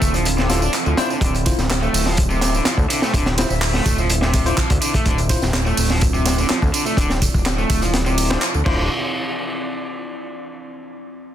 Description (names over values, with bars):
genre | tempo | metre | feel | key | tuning
breakbeat, breaks | 125 BPM | 4/4 | straight | D minor | A4 = 440 Hz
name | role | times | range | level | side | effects
deep dark ambient pad | sustained chords | 0.0-8.9 s | C4 to E5 | -27 LUFS | right 2 dB | chorus, built-in reverb, sidechain pumping
raw garage guitar | riff | 0.0-8.9 s | C3 to D4 | -24 LUFS | equal | overdrive, tube saturation, vintage 12-bit sampler grit, dub echo
fat analog bass | bass | 0.0-8.9 s | D1 to D2 | -21 LUFS | equal | none
crunchy breakbeat drum kit | drums | 0.0-8.8 s | crash cymbal, hi-hat, kick drum, snare drum | -21 LUFS | equal | none
house drum kit | drums | 0.0-8.6 s | handclaps, ride cymbal, tambourine | -25 LUFS | right 2 dB | none
bell-like tine electric piano | stabs | 0.5-8.8 s | E4 to C5 | -29 LUFS | left 3 dB | fast stereo tremolo, vintage 12-bit sampler grit, dub echo
room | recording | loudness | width
light reverb | dense, heavily limited modern master | -16 LUFS | side -11 dB against mid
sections
0.0-8.9 A section; 8.9-10.8 B section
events
drop 0.0-8.9; band accent 8.4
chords
0.0 Dm9; 8.9 N.C.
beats
0.26 0.74 | 1.22 1.70 2.18 2.66 | 3.14 3.62 4.10 4.58 | 5.06 5.54 6.02 6.50 | 6.98 7.46 7.94 8.42